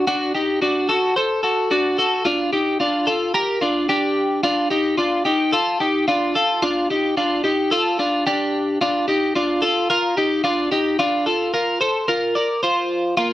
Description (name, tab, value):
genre	indie pop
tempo	110 BPM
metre	4/4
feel	straight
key	unclear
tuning	A4 = 440 Hz
part	twelve-string electric guitar	solo	0.0-13.3 s	Bb3 to D5	-17 LUFS	equal	none
room	moderate club reverb, RT60 0.5 s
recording	none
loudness	-17 LUFS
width	side -14 dB against mid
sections	0.0-4.4 A section; 4.4-13.3 B section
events	none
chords	0.0 D; 2.3 Gm7; 4.4 Dm; 8.8 Bbadd9